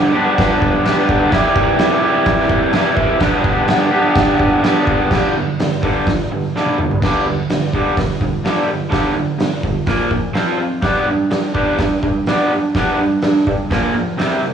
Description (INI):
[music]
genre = garage rock duo or trio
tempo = 126 BPM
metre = 4/4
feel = straight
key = G mixolydian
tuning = A4 = 441 Hz
[part]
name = raw garage guitar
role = riff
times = 0.0-14.5 s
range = G2 to G4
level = -15 LUFS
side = right 1 dB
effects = overdrive
[part]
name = oversized low-tuned drum kit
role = drums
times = 0.4-14.3 s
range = crash cymbal, hi-hat, kick drum, snare drum, toms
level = -19 LUFS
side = equal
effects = cassette tape
[sound]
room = moderate spring reverb, RT60 2.4 s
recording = home recording on cassette, studio ambience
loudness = -14 LUFS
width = side -8 dB against mid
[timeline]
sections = 0.0-5.1 A section; 5.1-7.0 B section; 7.0-14.5 C section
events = drum fill 6.5-7.0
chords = 0.0 G; 1.3 C; 3.2 G; 5.1 G5; 9.9 Bb5; 10.4 F5; 10.8 G; 13.7 Bb5